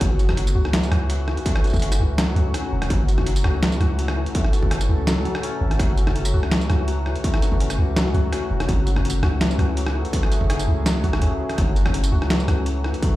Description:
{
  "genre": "half-time drum and bass",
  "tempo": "166 BPM",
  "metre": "4/4",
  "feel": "swing 53% on 16ths, half-time",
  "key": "F# minor",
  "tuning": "A4 = 439 Hz",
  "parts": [
    { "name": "deep dark ambient pad", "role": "sustained chords", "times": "0.0-13.2 s", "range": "A3 to A4", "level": "-31 LUFS", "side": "left 1 dB", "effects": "chorus, built-in reverb, sidechain pumping" },
    { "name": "santur", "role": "arpeggios", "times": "0.0-13.2 s", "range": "E3 to F#4", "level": "-29 LUFS", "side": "left 4 dB", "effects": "digital delay" },
    { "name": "long sustained 808-style bass", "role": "bass", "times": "0.0-12.9 s", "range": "E1 to C#2", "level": "-21 LUFS", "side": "equal", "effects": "none" },
    { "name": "boom bap sampler-style drum kit", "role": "drums", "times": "0.0-13.1 s", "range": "hi-hat, rim click, snare drum, tambourine", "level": "-26 LUFS", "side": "equal", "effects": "none" },
    { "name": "electronic kick drum", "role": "drums", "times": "0.0-13.1 s", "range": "none", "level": "-21 LUFS", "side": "equal", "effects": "distortion" }
  ],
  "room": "little or no reverb",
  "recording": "played on a big sound system in a bare room, large studio reverb",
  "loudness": "-18 LUFS",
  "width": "side -16 dB against mid",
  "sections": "0.0-13.2 A section",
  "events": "drop 0.0-13.2",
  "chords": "0.0 F#m"
}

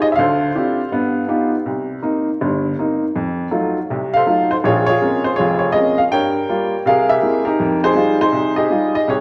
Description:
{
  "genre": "solo jazz",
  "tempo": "162 BPM",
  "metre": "4/4",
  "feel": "swing 64% on 8ths",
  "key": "F minor",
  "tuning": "A4 = 441 Hz",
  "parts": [
    { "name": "clear upright piano", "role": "solo", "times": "0.0-9.2 s", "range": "F1 to G5", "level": "-17 LUFS", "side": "equal", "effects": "none" }
  ],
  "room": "wet recital hall reverb, RT60 1.7 s",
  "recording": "recorded in a church or concert hall",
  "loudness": "-17 LUFS",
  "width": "mono",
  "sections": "0.0-9.2 A section",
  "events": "none",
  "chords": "0.2 Dm11; 0.9 G7b13; 1.7 Cm7; 3.1 F7b9; 4.6 Bbm9; 6.1 Gm7b5; 6.8 C7b13; 7.6 Fm9"
}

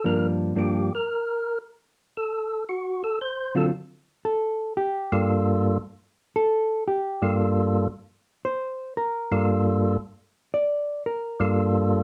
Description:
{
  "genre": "jazz",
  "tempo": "114 BPM",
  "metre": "4/4",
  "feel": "swing 69% on 8ths",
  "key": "G minor",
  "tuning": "A4 = 440 Hz",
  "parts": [
    { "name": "percussive tonewheel organ", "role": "melody", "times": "0.0-12.0 s", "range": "G2 to C5", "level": "-25 LUFS", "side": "equal", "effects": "slow rotary speaker, overdrive" },
    { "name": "hollow-body jazz guitar", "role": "accompaniment", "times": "0.0-11.5 s", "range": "G2 to D5", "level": "-26 LUFS", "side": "equal", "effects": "none" }
  ],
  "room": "moderate studio ambience, RT60 0.5 s",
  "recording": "dark, warm production",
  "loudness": "-26 LUFS",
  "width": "mono",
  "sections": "0.0-4.2 A section; 4.2-12.0 A section",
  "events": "tonewheel organ solo 0.0-4.2; hollow-body jazz guitar solo 4.2-12.0",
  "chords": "0.0 Gm7; 2.1 D7#9; 4.2 Gm7"
}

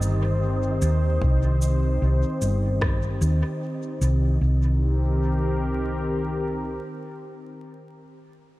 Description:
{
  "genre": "ambient dub",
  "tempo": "75 BPM",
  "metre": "4/4",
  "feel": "swing 57% on 16ths",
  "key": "C minor",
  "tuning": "A4 = 440 Hz",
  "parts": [
    { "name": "warm analog pad", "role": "sustained chords", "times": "0.0-8.0 s", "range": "Eb3 to C5", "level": "-28 LUFS", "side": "left 1 dB", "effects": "lush chorus" },
    { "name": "hollow-body short-scale fingered electric bass", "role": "bass", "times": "0.0-6.8 s", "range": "G1 to Eb2", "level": "-22 LUFS", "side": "equal", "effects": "none" },
    { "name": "electronic cabasa and rim click", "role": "drums", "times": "0.0-4.2 s", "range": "none", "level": "-36 LUFS", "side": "equal", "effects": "dub echo" },
    { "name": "wind-like tuned noise texture", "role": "texture", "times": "0.0-4.4 s", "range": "Eb4", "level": "-40 LUFS", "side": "right 4 dB", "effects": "built-in reverb" },
    { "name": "electronic kick drum", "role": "drums", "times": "1.2-3.0 s", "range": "none", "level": "-24 LUFS", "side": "equal", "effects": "none" }
  ],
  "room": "light reverb, digital ambience",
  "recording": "vinyl crackle",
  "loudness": "-21 LUFS",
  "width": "side -18 dB against mid",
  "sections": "0.0-4.4 A section; 4.4-7.6 B section",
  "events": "none",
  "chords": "0.0 Cm; 4.4 Cm7"
}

